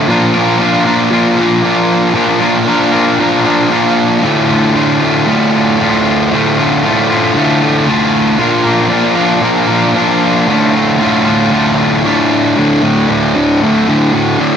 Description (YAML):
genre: rock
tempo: 116 BPM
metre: 4/4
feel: straight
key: D minor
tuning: A4 = 439 Hz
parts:
  - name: fuzz guitar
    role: solo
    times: 0.0-14.6 s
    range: D2 to Bb4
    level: -9 LUFS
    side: equal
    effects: distortion, slapback echo
room: light reverb, digital ambience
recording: none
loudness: -9 LUFS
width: side -8 dB against mid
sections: 0.0-12.6 A section; 12.6-14.6 B section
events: none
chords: 0.1 Bb; 4.2 Dm; 8.4 Bb; 10.5 Dm